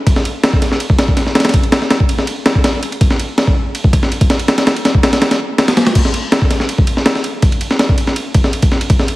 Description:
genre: drum and bass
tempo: 163 BPM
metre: 4/4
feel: straight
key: none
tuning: none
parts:
  - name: breakbeat sampler-style drum kit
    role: drums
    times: 0.1-9.2 s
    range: crash cymbal, kick drum, ride cymbal, snare drum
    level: -11 LUFS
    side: equal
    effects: studio reverb
room: light reverb, digital ambience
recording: heavily compressed radio sound, multiband compression, vinyl crackle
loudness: -11 LUFS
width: side -18 dB against mid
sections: 0.0-6.0 A section; 6.0-9.2 A section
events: drop 0.0-6.0, 6.0-9.2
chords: none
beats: | 0.07 0.43 0.80 1.17 | 1.54 1.91 2.27 2.64 | 3.01 3.38 3.75 4.11 | 4.48 4.85 5.22 5.59 | 5.96 6.32 6.69 7.06 | 7.43 7.79 8.16 8.53 | 8.90

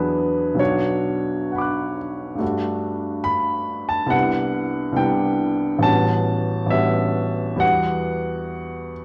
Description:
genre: classical, impressionist solo piano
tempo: 69 BPM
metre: 4/4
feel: rubato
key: unclear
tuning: A4 = 440 Hz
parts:
  - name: clear baby grand piano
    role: solo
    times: 0.0-9.0 s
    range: A1 to F#6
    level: -22 LUFS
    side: equal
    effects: none
room: moderate recital hall reverb, RT60 1.6 s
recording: dark, warm production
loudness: -22 LUFS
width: mono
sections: 0.0-9.0 A section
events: none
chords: 0.0 E9; 0.6 Bmadd9; 2.4 Gsus2; 4.1 Cmaj9; 5.9 A13; 7.6 Emadd9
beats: 0.59 1.51 | 2.41 3.27 4.13 5.00 | 5.87 6.75 7.62 8.49

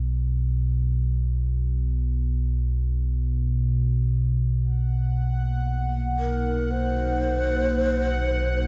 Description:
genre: dark ambient drone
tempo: free time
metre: none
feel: none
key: unclear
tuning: A4 = 440 Hz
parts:
  - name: deep rumbling drone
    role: drone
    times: 0.0-8.7 s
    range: B1 to B2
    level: -25 LUFS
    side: equal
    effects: built-in reverb, subtle chorus
  - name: deep dark ambient pad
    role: sustained chords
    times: 5.4-8.7 s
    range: A#3 to F#4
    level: -34 LUFS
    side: equal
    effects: chorus, built-in reverb
  - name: bubbling stepped-filter texture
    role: texture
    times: 4.6-8.7 s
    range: F#5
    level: -35 LUFS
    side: equal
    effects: chorus, built-in reverb
  - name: breathy mellow long shakuhachi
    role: melody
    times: 6.2-8.7 s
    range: A#4 to C5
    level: -29 LUFS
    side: equal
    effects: diffuse ambient delay
room: moderate huge ambient reverb, RT60 8.1 s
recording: dark, warm production, nothing above 7.8 kHz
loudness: -25 LUFS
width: mono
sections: 0.0-8.7 A section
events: filter sweep on synth drone 0.0-8.7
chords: 0.0 N.C.; 4.6 D#m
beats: free time

